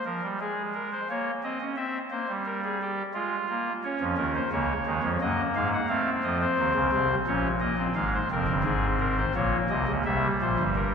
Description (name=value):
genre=classical, baroque-style 3-part fugue for pipe organ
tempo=87 BPM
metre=3/4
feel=straight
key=Bb minor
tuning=A4 = 441 Hz
part: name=pipe organ, soft reed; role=solo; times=0.0-10.9 s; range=F1 to Gb5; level=-25 LUFS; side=equal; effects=none
room=wet church reverb, RT60 3.5 s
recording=recorded in a church or concert hall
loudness=-25 LUFS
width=side -6 dB against mid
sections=0.0-10.9 A section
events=none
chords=0.0 Fm; 1.1 Bbm; 1.8 C7; 3.1 Fm/Ab; 3.8 Bbm; 5.2 Ebm/Gb; 5.9 F7; 7.3 Bbm; 8.0 Fm; 9.4 Bbm; 10.1 C7